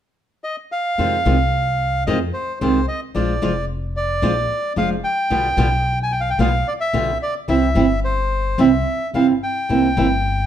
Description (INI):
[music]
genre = tango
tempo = 110 BPM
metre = 4/4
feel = rubato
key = unclear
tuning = A4 = 441 Hz
[part]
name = bandoneon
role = melody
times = 0.4-10.5 s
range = C5 to Ab5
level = -21 LUFS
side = equal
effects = plate reverb
[part]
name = flamenco guitar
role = accompaniment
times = 1.0-10.1 s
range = B2 to F4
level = -19 LUFS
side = right 2 dB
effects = none
[part]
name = upright bass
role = bass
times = 1.0-10.5 s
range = F1 to F2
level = -22 LUFS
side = left 1 dB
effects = none
[sound]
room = moderate large studio reverb, RT60 1.0 s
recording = none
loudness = -17 LUFS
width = side -10 dB against mid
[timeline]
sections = 1.0-10.5 A section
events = none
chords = 0.0 N.C.; 1.0 Fm7; 3.2 Bb7; 5.3 G7/B; 7.5 C; 9.7 C7